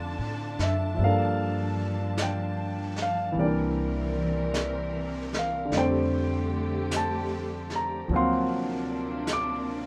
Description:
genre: jazz ballad.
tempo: 51 BPM.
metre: 4/4.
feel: swing 66% on 8ths.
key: F major.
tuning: A4 = 440 Hz.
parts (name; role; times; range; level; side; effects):
warm concert grand piano; accompaniment; 0.0-9.9 s; D3 to D6; -30 LUFS; equal; none.
warm symphonic string section; sustained chords; 0.0-9.9 s; C3 to A5; -37 LUFS; equal; none.
upright bass; bass; 0.0-9.9 s; C2 to A2; -34 LUFS; equal; none.
vintage brush drum kit; drums; 0.6-9.9 s; brushed snare drum, hi-hat, snare drum; -39 LUFS; equal; none.
room: moderate club reverb, RT60 0.7 s.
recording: none.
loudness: -28 LUFS.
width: mono.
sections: 0.0-9.9 A section.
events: none.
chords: 0.0 Bbmaj7 (rootless); 1.0 Gm9; 3.4 C7; 5.7 F69; 8.1 D7alt.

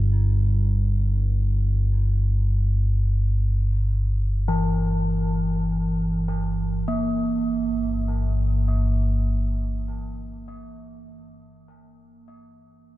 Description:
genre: dark ambient drone.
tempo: free time.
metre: none.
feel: none.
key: G dorian.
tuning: A4 = 440 Hz.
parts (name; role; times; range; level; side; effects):
gamelan-type bronze metallophone; arpeggios; 0.0-11.7 s; E3 to E4; -27 LUFS; equal; tape echo.
deep rumbling drone; drone; 0.0-11.0 s; G1 to G2; -22 LUFS; equal; built-in reverb, lush chorus.
room: light reverb.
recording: dark, warm production.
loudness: -21 LUFS.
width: side -16 dB against mid.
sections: 0.0-6.9 A section; 6.9-11.7 B section.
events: none.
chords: 0.0 Em/G; 6.9 Gm.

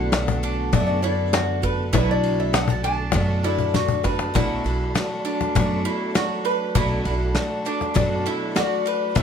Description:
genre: acoustic folk duo or small band.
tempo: 100 BPM.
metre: 4/4.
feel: straight.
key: unclear.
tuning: A4 = 439 Hz.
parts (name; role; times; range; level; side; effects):
picked acoustic archtop guitar; melody; 0.0-4.0, 8.6-9.2 s; B4 to A5; -26 LUFS; left 5 dB; none.
picked twelve-string acoustic guitar; accompaniment; 0.0-9.2 s; B2 to F#4; -27 LUFS; left 1 dB; none.
mellow tonewheel organ; sustained chords; 0.0-9.2 s; D3 to B5; -34 LUFS; right 2 dB; slow rotary speaker, chorus vibrato.
bowl-back mandolin; arpeggios; 0.0-9.2 s; D4 to B4; -27 LUFS; right 5 dB; none.
upright bass; bass; 0.0-9.2 s; B1 to F#2; -25 LUFS; right 1 dB; none.
loose indie drum kit; drums; 0.1-9.2 s; kick drum, ride cymbal, snare drum; -28 LUFS; right 1 dB; none.
cajon; percussion; 0.1-9.2 s; none; -24 LUFS; left 6 dB; none.
room: little or no reverb.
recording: none.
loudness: -20 LUFS.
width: side -7 dB against mid.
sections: 0.0-4.4 A section; 4.4-9.2 B section.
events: steel-string acoustic guitar solo 0.0-4.4; drum fill 3.6-4.4.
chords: 0.0 Bm7.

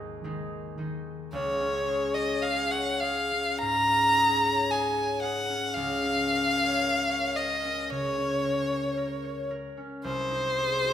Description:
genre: classical, romantic duo for violin and harp.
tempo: 56 BPM.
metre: 4/4.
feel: rubato.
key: Db major.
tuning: A4 = 442 Hz.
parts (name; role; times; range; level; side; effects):
concert harp; accompaniment; 0.0-10.9 s; Ab1 to C6; -31 LUFS; left 2 dB; none.
rich violin; melody; 1.3-10.9 s; C5 to Bb5; -26 LUFS; left 1 dB; none.
room: moderate scoring stage reverb, RT60 1.9 s.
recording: none.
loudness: -25 LUFS.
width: side -10 dB against mid.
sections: 0.0-1.3 A section; 1.3-10.9 B section.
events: none.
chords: 0.0 Ab; 1.3 Db5; 5.8 Db6; 10.0 Ab/C.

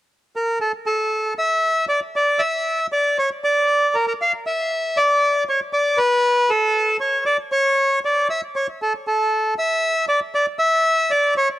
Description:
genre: tango.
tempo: 117 BPM.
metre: 4/4.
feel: rubato.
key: unclear.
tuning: A4 = 435 Hz.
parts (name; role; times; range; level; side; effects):
bandoneon; solo; 0.4-11.5 s; A4 to F5; -17 LUFS; equal; cassette tape, analog delay.
room: moderate studio reverb, RT60 0.5 s.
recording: home recording on cassette.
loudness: -17 LUFS.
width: side -15 dB against mid.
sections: 0.6-11.6 A section.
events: none.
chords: none.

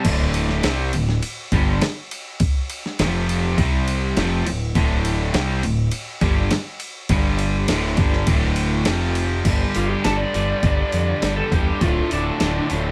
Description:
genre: classic rock.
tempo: 102 BPM.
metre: 4/4.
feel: straight.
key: D dorian.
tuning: A4 = 440 Hz.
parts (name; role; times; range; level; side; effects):
cranked stack guitar; riff; 0.0-12.9 s; D2 to C4; -29 LUFS; equal; overdrive.
cranked stack guitar; riff; 0.0-12.9 s; D2 to C4; -28 LUFS; equal; overdrive.
growling picked electric bass; bass; 0.0-12.9 s; D1 to F2; -26 LUFS; equal; overdrive.
dusty soul sampler-style drum kit; drums; 0.0-12.8 s; crash cymbal, hi-hat, kick drum, ride cymbal, snare drum; -25 LUFS; equal; overdrive.
tonewheel organ; sustained chords; 9.4-12.9 s; A3 to B4; -39 LUFS; equal; none.
lead guitar through a small cranked amp; melody; 9.8-12.7 s; D4 to D5; -27 LUFS; equal; overdrive.
room: light reverb.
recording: band playing live in one room.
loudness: -21 LUFS.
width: mono.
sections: 0.0-9.5 A section; 9.5-12.9 B section.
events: kick and snare drop out 9.2; lead electric guitar solo 9.5-12.9.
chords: 0.0 D5; 3.0 F5; 3.6 C5; 4.2 Dm; 7.1 G5; 7.7 D5; 8.9 F5; 9.5 G; 11.8 Dm.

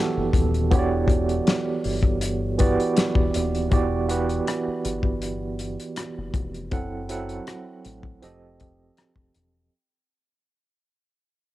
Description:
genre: R&B, neo-soul.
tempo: 80 BPM.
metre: 4/4.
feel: swing 53% on 16ths.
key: unclear.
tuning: A4 = 439 Hz.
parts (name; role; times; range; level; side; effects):
barky tine electric piano; accompaniment; 0.0-9.7 s; E3 to F#5; -25 LUFS; right 4 dB; overdrive, medium tremolo, cassette tape.
deep dub fingered electric bass; bass; 0.2-9.7 s; D#1 to A1; -28 LUFS; left 1 dB; tube saturation.
warm soul drum kit; drums; 0.3-9.5 s; hi-hat, kick drum, rim click, snare drum; -23 LUFS; left 2 dB; cassette tape.
room: light reverb.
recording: home recording on cassette.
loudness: -22 LUFS.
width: side -15 dB against mid.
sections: 0.0-3.7 A section; 3.7-9.7 B section.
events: fade-out 3.7-9.7.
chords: 0.0 Em9; 6.7 F#m7b5; 8.2 F9.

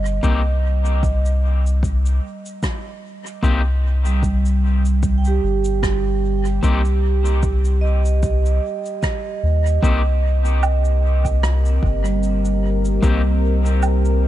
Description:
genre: ambient dub.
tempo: 75 BPM.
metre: 4/4.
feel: swing 56% on 16ths.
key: C minor.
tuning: A4 = 440 Hz.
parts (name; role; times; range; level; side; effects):
vibraphone with medium hard mallets; arpeggios; 0.0-14.3 s; G3 to G5; -24 LUFS; right 6 dB; tape echo.
soft dub sub bass; bass; 0.0-14.3 s; G1 to Eb2; -17 LUFS; equal; none.
cabasa, rim click and woodblock; drums; 0.1-14.2 s; none; -30 LUFS; right 2 dB; dub echo.
electric guitar at the edge of break-up; stabs; 0.2-13.2 s; Bb3 to G4; -28 LUFS; left 4 dB; harmonic tremolo, dub echo.
electronic kick drum; drums; 0.2-13.2 s; none; -22 LUFS; equal; none.
deep dark ambient pad; sustained chords; 10.6-14.3 s; C4 to Eb5; -26 LUFS; left 2 dB; chorus, built-in reverb.
room: studio reverb.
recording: nothing above 10.6 kHz.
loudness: -16 LUFS.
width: side -13 dB against mid.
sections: 0.0-9.8 A section; 9.8-14.3 B section.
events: none.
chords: 0.0 Cm; 9.8 Cm7.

